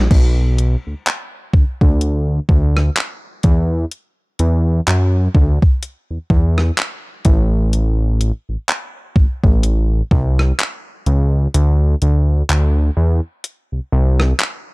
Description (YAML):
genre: contemporary R&B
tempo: 63 BPM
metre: 4/4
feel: swing 58% on 16ths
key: A dorian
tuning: A4 = 441 Hz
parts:
  - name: fat analog bass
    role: bass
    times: 0.0-14.3 s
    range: A1 to F#2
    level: -14 LUFS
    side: equal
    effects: none
  - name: crisp 8-bit digital drum machine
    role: drums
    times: 0.1-14.7 s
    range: crash cymbal, handclaps, hi-hat, kick drum, rim click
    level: -15 LUFS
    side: equal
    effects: overdrive
room: little or no reverb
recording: dark, warm production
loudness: -14 LUFS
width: side -27 dB against mid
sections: 0.0-14.7 A section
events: kick muted 11.5-14.7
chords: none